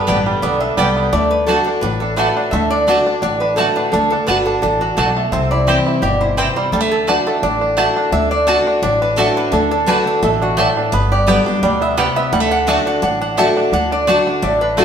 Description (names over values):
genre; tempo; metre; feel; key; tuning
bluegrass; 172 BPM; 4/4; swing 54% on 8ths; D mixolydian; A4 = 440 Hz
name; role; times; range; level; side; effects
lap resonator guitar; melody; 0.0-14.8 s; F#4 to F#5; -18 LUFS; equal; none
picked steel-string acoustic guitar; accompaniment; 0.0-14.8 s; G2 to G4; -20 LUFS; left 2 dB; none
bluegrass banjo; arpeggios; 0.0-14.8 s; G3 to G4; -20 LUFS; right 3 dB; none
mandolin; stabs; 0.1-14.8 s; A3 to A5; -20 LUFS; right 1 dB; none
upright bass; bass; 0.1-14.8 s; G1 to D2; -22 LUFS; left 1 dB; none
room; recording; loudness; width
wet stone room reverb, RT60 1.2 s; band playing live in one room; -13 LUFS; side -8 dB against mid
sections
0.0-8.1 A section; 8.1-14.8 A section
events
none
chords
0.0 G; 1.1 D; 5.3 C; 6.7 D; 10.9 G; 12.3 D